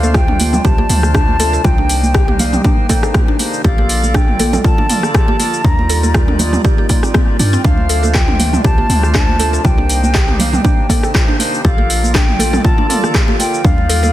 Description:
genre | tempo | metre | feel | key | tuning
afro house | 120 BPM | 4/4 | swing 54% on 16ths | unclear | A4 = 440 Hz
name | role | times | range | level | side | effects
concert flute | melody | 0.0-14.1 s | F5 to Bb5 | -21 LUFS | left 2 dB | dub echo
warm analog pad | sustained chords | 0.0-14.1 s | C3 to D5 | -26 LUFS | equal | chorus, phaser, sidechain pumping
mallet-like synth pluck | arpeggios | 0.0-14.1 s | C4 to A4 | -24 LUFS | equal | chorus, sidechain pumping, dub echo
bright tonewheel organ | stabs | 0.0-14.1 s | G3 to D5 | -22 LUFS | right 1 dB | slow rotary speaker, sidechain pumping, dub echo
warm 808-style bass | bass | 0.0-14.1 s | Bb1 to G2 | -16 LUFS | equal | sidechain pumping
house drum kit | drums | 0.0-14.1 s | cabasa, handclaps, hi-hat, rim click, toms | -19 LUFS | right 1 dB | studio reverb
congas | percussion | 0.0-14.1 s | none | -21 LUFS | right 2 dB | none
electronic kick drum | drums | 0.1-13.8 s | none | -13 LUFS | equal | studio reverb
room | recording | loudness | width
light reverb | dense, heavily limited modern master | -11 LUFS | side -14 dB against mid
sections
0.0-14.1 A section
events
none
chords
0.0 Dm7; 1.6 Cm9; 3.6 Bbmaj7; 5.6 Ebmaj9; 7.6 Dm7; 9.6 Cm9; 11.6 Bbmaj7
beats
0.15 0.65 1.15 | 1.65 2.15 2.65 3.15 | 3.65 4.15 4.65 5.15 | 5.65 6.15 6.65 7.15 | 7.65 8.15 8.65 9.15 | 9.65 10.15 10.65 11.15 | 11.65 12.15 12.65 13.15 | 13.65

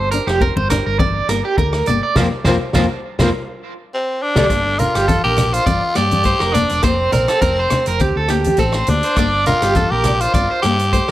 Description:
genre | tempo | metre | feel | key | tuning
highlife guitar band | 103 BPM | 4/4 | swing 54% on 16ths | G minor | A4 = 440 Hz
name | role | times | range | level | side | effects
picked steel-string acoustic guitar | accompaniment | 0.0-11.1 s | F3 to D4 | -24 LUFS | left 5 dB | none
electric guitar at the edge of break-up | arpeggios | 0.0-11.1 s | F4 to D5 | -20 LUFS | right 3 dB | tremolo, tape echo
hollow-body short-scale fingered electric bass | bass | 0.0-11.1 s | E1 to G2 | -21 LUFS | equal | none
vintage drum kit | drums | 0.1-11.1 s | hi-hat, kick drum, rim click, snare drum | -22 LUFS | equal | none
congas | percussion | 0.6-10.5 s | none | -22 LUFS | left 1 dB | none
raspy tenor saxophone | melody | 3.9-11.1 s | C4 to G4 | -18 LUFS | left 1 dB | none
room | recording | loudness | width
moderate spring reverb, RT60 1.6 s, small room reverb | none | -14 LUFS | side -14 dB against mid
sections
0.0-4.5 A section; 4.5-11.1 B section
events
band accent 2.2-4.5; drum fill 3.8-4.5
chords
0.0 Gm; 2.2 Fsus4; 3.3 Dsus4; 4.5 Gm; 6.8 Fsus4; 8.0 Dsus4; 9.2 Gm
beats
0.41 1.00 1.58 | 2.16 2.75 3.33 3.91 | 4.50 5.08 5.67 6.25 | 6.83 7.42 8.00 8.59 | 9.17 9.76 10.34 10.93

